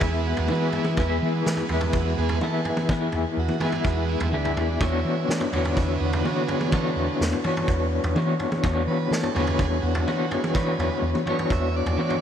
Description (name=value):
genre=psychedelic rock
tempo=126 BPM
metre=4/4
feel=straight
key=E mixolydian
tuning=A4 = 436 Hz
part: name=combo organ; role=sustained chords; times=0.0-12.2 s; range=D3 to E5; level=-30 LUFS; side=right 6 dB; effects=none
part: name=electric guitar through a small old amp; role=riff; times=0.0-12.2 s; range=E3 to C#5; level=-25 LUFS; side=left 2 dB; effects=tremolo
part: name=hollow-body short-scale fingered electric bass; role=bass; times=0.0-12.2 s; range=D2 to E3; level=-26 LUFS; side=equal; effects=none
part: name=vintage drum kit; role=drums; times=0.0-12.2 s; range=kick drum, snare drum, toms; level=-28 LUFS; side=equal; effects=none
room=moderate huge ambient reverb, RT60 7.8 s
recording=dreamy mix soaked in reverb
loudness=-22 LUFS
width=side -9 dB against mid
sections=0.0-12.2 A section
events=transistor combo organ solo 0.0-12.2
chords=0.0 E; 4.8 Bmadd9/E